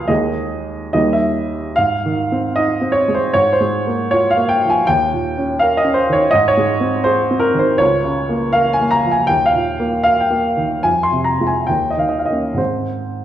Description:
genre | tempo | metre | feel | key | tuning
classical, romantic character piece for solo piano | 64-82 BPM | 2/4 | rubato | Ab major | A4 = 442 Hz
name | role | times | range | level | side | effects
warm upright piano | solo | 0.0-13.2 s | Db2 to C6 | -14 LUFS | equal | none
room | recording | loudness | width
wet recital hall reverb, RT60 1.5 s | dark, warm production | -14 LUFS | side -11 dB against mid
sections
0.0-1.8 A section; 1.8-13.2 B section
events
none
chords
0.1 Ebsus4; 0.9 Eb; 1.8 Ab; 3.3 Bb5/Ab; 4.9 Eb7; 6.3 Ab; 7.8 Bbm/Db; 9.3 Eb5; 10.9 Fm; 11.7 Eb5; 12.6 Ab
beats
| 0.09 0.92 | 1.76 2.56 | 3.33 4.11 | 4.86 5.59 | 6.32 7.06 | 7.80 8.55 | 9.29 10.05 | 10.85 11.69 | 12.58

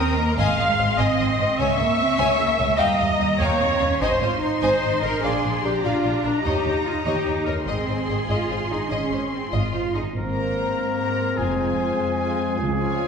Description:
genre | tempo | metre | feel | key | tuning
cinematic | 99 BPM (dotted quarters) | 12/8 | straight | Ab major | A4 = 440 Hz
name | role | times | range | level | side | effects
warm symphonic violin section | melody | 0.0-13.1 s | Ab5 to Eb6 | -30 LUFS | left 4 dB | none
rich symphonic violin section | second line | 0.0-13.1 s | Ab4 to Bb5 | -29 LUFS | left 4 dB | none
rich symphonic viola section | accompaniment | 0.0-13.1 s | D4 to F5 | -24 LUFS | equal | none
rich symphonic cello section | bass | 0.0-13.1 s | Db2 to F4 | -27 LUFS | right 2 dB | none
rich symphonic double bass section | bass | 0.0-13.0 s | F1 to Eb2 | -27 LUFS | right 1 dB | none
clear oboe | second line | 10.2-13.1 s | Ab4 to Bb4 | -29 LUFS | left 1 dB | none
mellow clarinet | second line | 10.2-13.1 s | C4 to F4 | -29 LUFS | left 3 dB | none
mellow French horn section | sustained chords | 10.2-13.1 s | F3 to C5 | -26 LUFS | left 2 dB | none
room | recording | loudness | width
wet scoring stage reverb, RT60 2.0 s | heard from further back in the room | -20 LUFS | side -6 dB against mid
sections
0.0-10.2 A section; 10.2-13.1 B section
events
none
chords
0.4 Ab; 1.6 Dbm; 2.8 Ebadd9; 4.0 Ab; 5.2 Bb7; 6.4 Eb7; 7.7 Ab; 10.2 Abadd9; 11.4 Fm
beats
| 0.38 0.98 1.59 2.19 | 2.79 3.40 4.01 4.62 | 5.22 5.83 6.44 7.05 | 7.67 8.29 8.92 9.54 | 10.16 10.78 11.38 11.99 | 12.60

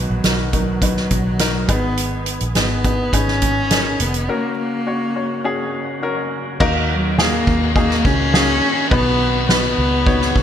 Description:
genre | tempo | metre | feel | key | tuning
piano-driven pop | 104 BPM | 4/4 | straight | Eb minor | A4 = 441 Hz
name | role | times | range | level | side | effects
dark cello | melody | 0.0-10.4 s | F#3 to Db4 | -20 LUFS | left 1 dB | none
warm upright piano | accompaniment | 0.0-10.4 s | Ab2 to Db5 | -23 LUFS | left 3 dB | none
overdriven tonewheel organ | sustained chords | 0.0-10.4 s | Db3 to Ab4 | -32 LUFS | right 1 dB | chorus vibrato, fast rotary speaker
vintage muted fingered electric bass | bass | 0.0-10.4 s | F1 to Eb2 | -22 LUFS | equal | none
soft-mallet drum kit | drums | 0.2-10.4 s | crash cymbal, hi-hat, kick drum, ride cymbal, snare drum | -19 LUFS | right 1 dB | none
room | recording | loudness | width
light reverb, small room ambience | bright 1980s-style digital production | -15 LUFS | side -9 dB against mid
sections
0.0-6.6 A section; 6.6-10.4 B section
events
break 4.3-6.6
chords
0.0 B; 1.7 Abm; 4.3 Gb; 6.6 Ebm; 8.9 B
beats
0.24 0.82 1.40 | 1.98 2.56 3.14 3.71 | 4.29 4.87 5.45 6.03 | 6.61 7.18 7.76 8.34 | 8.91 9.49 10.07

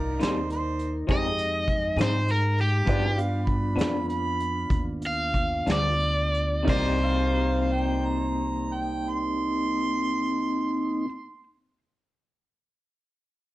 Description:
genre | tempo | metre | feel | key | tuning
slow blues | 58-68 BPM (dotted quarters) | 12/8 | straight | C minor | A4 = 440 Hz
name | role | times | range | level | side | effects
mellow harmonica | second line | 0.0-11.6 s | Bb4 to C6 | -31 LUFS | right 3 dB | none
bright upright piano | accompaniment | 0.0-11.1 s | Eb4 to Eb5 | -36 LUFS | right 2 dB | none
mellow tonewheel organ | sustained chords | 0.0-11.1 s | Ab3 to Bb4 | -31 LUFS | equal | slow rotary speaker
upright bass | bass | 0.0-11.1 s | C2 to Ab2 | -29 LUFS | equal | none
electric guitar through a small old amp | accompaniment | 0.2-11.2 s | G2 to Ab4 | -31 LUFS | left 3 dB | tremolo
vintage brush drum kit | drums | 0.2-6.8 s | crash cymbal, hi-hat, kick drum, snare drum | -29 LUFS | equal | none
cranked stack guitar | melody | 1.1-11.1 s | G4 to F5 | -28 LUFS | equal | overdrive
room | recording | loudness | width
moderate club reverb, RT60 0.7 s | worn, warbling old tape, cassette tape, warbly pitch drift | -23 LUFS | side -16 dB against mid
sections
0.0-6.7 A section; 6.7-10.8 B section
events
slowing down 1.7-6.7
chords
0.0 Cm7; 1.1 Fm7; 2.9 G7; 6.7 Cm7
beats
0.21 1.09 1.98 | 2.87 3.77 4.71 5.67 | 6.68 7.71 8.74 9.77

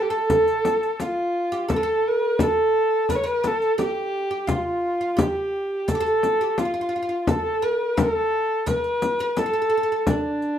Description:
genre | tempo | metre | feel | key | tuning
Persian modal ensemble | 86 BPM | 4/4 | straight | unclear | A4 = 440 Hz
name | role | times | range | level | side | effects
dark kamancheh | melody | 0.0-10.6 s | D4 to C#5 | -22 LUFS | left 1 dB | none
oud | second line | 0.0-10.6 s | D4 to Bb4+50c | -26 LUFS | right 3 dB | none
riq | percussion | 0.1-10.5 s | none | -38 LUFS | right 3 dB | none
frame drum | percussion | 0.3-10.2 s | none | -24 LUFS | left 3 dB | none
room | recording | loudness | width
wet studio reverb, RT60 0.6 s | rough home demo mix | -20 LUFS | side -9 dB against mid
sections
0.0-10.6 A section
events
none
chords
none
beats
0.30 1.00 | 1.69 2.39 3.09 3.79 | 4.49 5.18 5.88 6.58 | 7.27 7.97 8.67 9.36 | 10.06

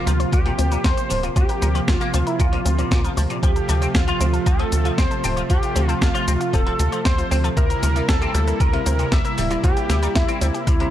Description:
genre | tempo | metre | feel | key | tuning
synthwave | 116 BPM | 4/4 | straight | unclear | A4 = 444 Hz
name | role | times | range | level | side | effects
wide unison lead | melody | 0.0-10.9 s | E4 to E5 | -26 LUFS | equal | lush chorus, cassette tape, ping-pong delay
FM electric piano with soft pad layer | second line | 0.0-10.9 s | E5 to E6 | -33 LUFS | equal | chorus, phaser, ping-pong delay
brassy analog pad | sustained chords | 0.0-10.9 s | C3 to F4 | -27 LUFS | right 1 dB | chorus, sidechain pumping
analog pluck | arpeggios | 0.0-10.9 s | C4 to C6 | -31 LUFS | left 2 dB | chorus, ping-pong delay
clean electric guitar | riff | 0.0-10.9 s | Bb2 to F4 | -30 LUFS | left 4 dB | ensemble chorus, ping-pong delay
tight sequencer bass | bass | 0.1-10.9 s | D1 to D2 | -21 LUFS | equal | sidechain pumping
clean 12-bit digital drum machine | drums | 0.1-10.9 s | hi-hat, shaker, snare drum | -27 LUFS | equal | none
electronic kick drum | drums | 0.3-10.8 s | none | -20 LUFS | equal | none
room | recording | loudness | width
light reverb, digital ambience | dark, warm production | -17 LUFS | side -12 dB against mid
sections
0.0-10.9 A section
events
none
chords
0.0 Bbsus2/D; 3.4 F/D; 7.6 C7/D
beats
0.33 0.84 | 1.36 1.88 2.40 2.91 | 3.43 3.95 4.46 4.98 | 5.50 6.02 6.53 7.05 | 7.57 8.09 8.60 9.12 | 9.64 10.15 10.67

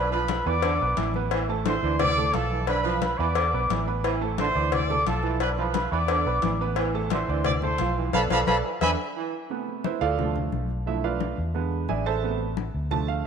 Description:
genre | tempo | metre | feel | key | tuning
latin, salsa | 176 BPM | 4/4 | straight | A harmonic minor | A4 = 438 Hz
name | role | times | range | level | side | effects
mellow trumpet section | melody | 0.0-8.9 s | A4 to D6 | -27 LUFS | equal | none
clear baby grand piano | accompaniment | 0.0-13.3 s | C3 to D6 | -30 LUFS | right 9 dB | none
vintage muted fingered electric bass | bass | 0.0-13.2 s | A1 to E2 | -28 LUFS | left 1 dB | none
bright trombone section | second line | 0.1-9.3 s | D3 to F3 | -32 LUFS | right 8 dB | none
congas | percussion | 0.1-13.3 s | none | -33 LUFS | left 11 dB | none
cowbell | percussion | 0.3-8.9 s | none | -31 LUFS | left 12 dB | none
room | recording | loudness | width
moderate echo chamber reverb, RT60 2.1 s | 1960s-style stereo with parts hard left and right | -23 LUFS | side -6 dB against mid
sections
0.0-9.5 A section; 9.5-13.3 B section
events
band accent 8.1-9.5; grand piano solo 9.5-13.3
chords
0.0 Bdim; 0.6 E5; 2.0 Dm; 2.7 Bdim; 3.4 E5; 4.7 Dm; 5.4 Bdim; 6.1 E5; 7.5 Dm; 8.1 Bm7b5; 8.8 E7(no3); 9.5 Amadd9; 10.2 Dm; 10.9 Bm7b5; 11.5 E7; 12.2 Amadd9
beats
0.29 0.63 0.97 | 1.31 1.66 2.00 2.34 | 2.68 3.02 3.36 3.71 | 4.05 4.39 4.73 5.07 | 5.41 5.75 6.09 6.43 | 6.77 7.11 7.46 7.79 | 8.14 8.48 8.82 9.16 | 9.50 9.84 10.18 10.52 | 10.86 11.21 11.55 11.89 | 12.23 12.57 12.91 13.25

